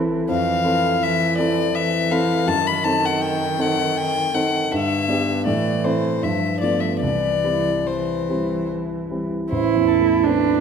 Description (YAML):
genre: classical, slow romantic movement for piano trio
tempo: 70-84 BPM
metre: 3/4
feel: rubato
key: C major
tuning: A4 = 444 Hz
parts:
  - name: dark cello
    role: second line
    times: 0.0-10.6 s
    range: D3 to E4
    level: -23 LUFS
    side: right 6 dB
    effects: none
  - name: dark grand piano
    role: accompaniment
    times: 0.0-10.6 s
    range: A1 to A4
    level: -22 LUFS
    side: equal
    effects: none
  - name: rich violin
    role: melody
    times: 0.3-10.6 s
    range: A4 to B5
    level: -22 LUFS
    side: left 6 dB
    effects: none
room: wet scoring stage reverb, RT60 1.5 s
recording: none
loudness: -18 LUFS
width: side -6 dB against mid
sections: 0.0-9.5 A section; 9.5-10.6 B section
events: none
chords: 0.3 Fmaj7; 2.5 F#dim7; 4.7 G; 5.5 Am; 6.2 G13; 7.0 C; 9.5 Am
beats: | 0.30 1.01 1.75 | 2.48 3.22 3.96 | 4.72 5.47 6.22 | 7.02 7.88 8.71 | 9.50 10.25